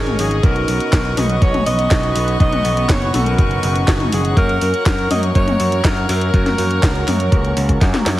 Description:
italo disco; 122 BPM; 4/4; straight; A4 = 440 Hz
breathy alto saxophone; melody; 0.0-7.5 s; Ab4 to Eb5; -22 LUFS; equal; tape echo
rich chamber string section; sustained chords; 0.0-8.2 s; B3 to Db6; -25 LUFS; left 3 dB
mellow synth brass; stabs; 0.0-8.2 s; B2 to Db5; -24 LUFS; right 3 dB; chorus, phaser
modern bright picked electric bass; bass; 0.0-8.2 s; F#1 to Gb2; -19 LUFS; equal
house drum kit; drums; 0.1-8.2 s; handclaps, hi-hat, snare drum, toms; -22 LUFS; left 2 dB
electronic kick drum; drums; 0.4-7.9 s; -16 LUFS; equal; overdrive
light reverb; heavily compressed radio sound; -14 LUFS; side -15 dB against mid
0.0-8.2 A section
drum fill 7.8-8.2
0.4 Badd9; 4.4 Gb
| 0.44 0.93 1.42 1.91 | 2.40 2.90 3.39 3.88 | 4.37 4.86 5.35 5.85 | 6.34 6.83 7.32 7.81

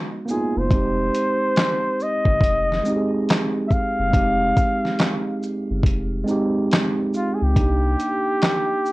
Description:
lo-fi hip hop; 70 BPM; 4/4; swing 64% on 16ths; F minor; A4 = 440 Hz
mellow tine electric piano; accompaniment; 0.0-8.9 s; Ab3 to Ab4; -23 LUFS; right 2 dB; cassette tape, low-pass filter
breathy flugelhorn; melody; 0.3-8.9 s; F4 to F5; -22 LUFS; equal; low-pass filter, plate reverb
dusty soul sampler-style drum kit; drums; 0.3-8.9 s; handclaps, hi-hat, kick drum, shaker, snare drum; -21 LUFS; equal
soft dub sub bass; bass; 0.6-8.0 s; F1 to Db2; -24 LUFS; equal; transformer saturation
light reverb; worn, warbling old tape, cassette tape, warbly pitch drift; -18 LUFS; side -19 dB against mid
0.0-8.9 A section
0.0 Abm9; 0.7 Fm9; 7.6 Cm9
| 0.71 1.56 2.42 3.28 | 4.14 4.99 5.85 6.71 | 7.56 8.42

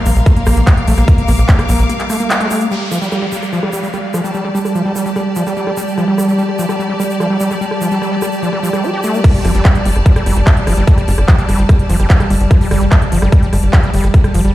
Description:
psychedelic trance; 147 BPM; 4/4; straight; G minor; A4 = 440 Hz
evolving wavetable pad; sustained chords; 0.0-14.5 s; G3; -21 LUFS; right 1 dB; chorus, built-in reverb, sidechain pumping
bright studio string section; texture; 0.0-14.5 s; G4 to D6; -23 LUFS; left 2 dB; sidechain pumping
overdriven acid bass; riff; 0.1-14.5 s; F3 to G4; -19 LUFS; equal; distortion, auto-pan, sidechain pumping, digital delay
tight sequencer bass; bass; 0.1-1.9, 9.4-14.5 s; G1 to Bb1; -12 LUFS; equal
big-room dance drum kit; drums; 0.1-14.5 s; crash cymbal, handclaps, hi-hat, rim click; -22 LUFS; equal; overdrive, low-pass filter on hats, studio reverb, low-pass filter on snare, low-pass filter on cymbals
tube shaker; percussion; 0.1-9.2 s; -32 LUFS; right 3 dB
electronic kick drum; drums; 0.3-1.6, 9.2-14.2 s; -10 LUFS; equal; overdrive, studio reverb
downlifter; sound effects; 2.7-6.0 s; -28 LUFS; equal
light reverb; played on a big sound system in a bare room, stone room reverb; -11 LUFS; side -15 dB against mid
0.0-2.7 A section; 2.7-9.2 B section; 9.2-14.5 A section
drop 0.0-2.7, 9.2-14.5; break 1.9-2.7; band accent 2.3; filter sweep on acid bass 2.7-9.2
0.0 Bb5; 2.7 G5
0.26 0.67 | 1.08 1.49 1.90 2.30 | 2.71 3.12 3.53 3.94 | 4.34 4.75 5.16 5.57 | 5.98 6.38 6.79 7.20 | 7.61 8.02 8.43 8.83 | 9.24 9.65 10.06 10.47 | 10.88 11.28 11.69 12.10 | 12.51 12.92 13.32 13.73 | 14.14

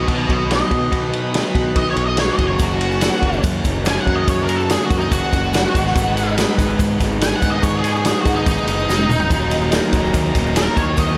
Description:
classic rock; 143 BPM; 4/4; straight; A4 = 440 Hz
octave-fuzz lead guitar; melody; 0.0-11.2 s; Eb4 to Ab5; -25 LUFS; equal; wah, distortion, slapback echo, analog delay
bright tonewheel organ; sustained chords; 0.0-11.2 s; Bb3 to B4; -35 LUFS; equal
raw garage guitar; riff; 0.0-11.2 s; Eb2 to F#4; -24 LUFS; equal; overdrive
picked electric bass; bass; 0.0-11.2 s; Eb1 to B2; -25 LUFS; equal
vintage drum kit; drums; 0.1-11.1 s; kick drum, ride cymbal, snare drum, toms; -22 LUFS; equal
tube shaker; percussion; 2.6-11.1 s; -40 LUFS; equal
crunchy overdriven guitar; riff; 9.3-11.2 s; Eb2 to Eb4; -27 LUFS; equal
moderate lush hall reverb, RT60 2.0 s; big arena sound; -18 LUFS; mono
0.0-11.2 A section
lead electric guitar solo 0.0-11.2; drum fill 8.9-9.3
0.0 B; 2.4 Gb; 5.7 Abm; 9.3 Ebm
0.08 0.50 | 0.92 1.34 1.76 2.18 | 2.60 3.02 3.44 3.86 | 4.28 4.70 5.12 5.54 | 5.96 6.38 6.79 7.21 | 7.63 8.05 8.47 8.89 | 9.31 9.73 10.14 10.56 | 10.98

